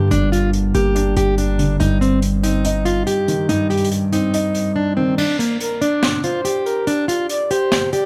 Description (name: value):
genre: hip hop, trap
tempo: 142 BPM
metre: 4/4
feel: half-time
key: unclear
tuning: A4 = 440 Hz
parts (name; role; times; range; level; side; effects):
- fingerpicked plugged-in steel-string acoustic guitar; melody; 0.0-8.1 s; Bb3 to G4; -22 LUFS; equal; none
- dark concert grand piano; accompaniment; 0.0-5.2 s; G2 to Eb4; -22 LUFS; equal; none
- distorted 808-style bass; bass; 0.0-3.0 s; G1 to G2; -22 LUFS; equal; distortion
- jazz brush drum kit; drums; 0.1-8.0 s; crash cymbal, hi-hat, snare drum; -27 LUFS; equal; none
- breathy flute-like synth lead; second line; 5.6-8.1 s; Bb4 to D5; -26 LUFS; equal; chorus, analog delay
room: light reverb, small room ambience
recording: vinyl crackle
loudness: -18 LUFS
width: mono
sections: 0.0-5.2 A section; 5.2-8.1 B section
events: drums muted 4.8-5.2; kick muted 5.2-8.1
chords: 0.0 Gm; 1.8 Cm/G; 5.2 N.C.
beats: | 0.11 0.53 0.96 1.38 | 1.80 2.22 2.65 3.07 | 3.49 3.91 4.34 4.76 | 5.18 5.60 6.03 6.45 | 6.87 7.29 7.72